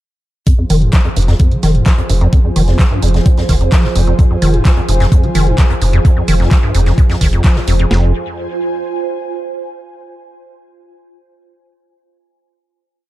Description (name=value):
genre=acid house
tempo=129 BPM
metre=4/4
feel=straight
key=F minor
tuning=A4 = 440 Hz
part: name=warm analog pad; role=sustained chords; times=0.5-8.1 s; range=F3 to C5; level=-23 LUFS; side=right 3 dB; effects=chorus, sidechain pumping
part: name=acid bass, square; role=riff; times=0.5-8.1 s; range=F2 to F3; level=-16 LUFS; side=equal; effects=overdrive, wide subtle chorus, sidechain pumping, digital delay
part: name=clean 12-bit digital drum machine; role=drums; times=0.5-8.0 s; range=kick drum, snare drum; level=-11 LUFS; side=equal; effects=none
part: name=punchy analog drum machine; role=drums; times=0.5-7.9 s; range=handclaps, hi-hat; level=-24 LUFS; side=right 1 dB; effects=none
part: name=unplugged drum kit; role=drums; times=0.5-7.8 s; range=hi-hat, snare drum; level=-30 LUFS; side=left 2 dB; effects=high-pass filter on hats, high-pass filter on snare, high-pass filter on room
part: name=ethereal airy pad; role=texture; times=1.3-9.7 s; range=F4 to Ab5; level=-23 LUFS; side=right 2 dB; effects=ensemble chorus, built-in reverb, phaser, sidechain pumping
part: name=round analog bass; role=bass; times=0.7-8.1 s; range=F1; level=-14 LUFS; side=equal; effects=sidechain pumping
room=digital ambience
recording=dark, warm production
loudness=-10 LUFS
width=side -15 dB against mid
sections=0.5-7.9 groove; 7.9-9.8 final chord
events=filter sweep on acid bass 0.5-7.9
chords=0.5 Fm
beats=| 0.47 0.93 1.40 1.86 | 2.33 2.79 3.26 3.72 | 4.19 4.65 5.12 5.58 | 6.05 6.51 6.98 7.44 | 7.91 8.37 8.84 9.30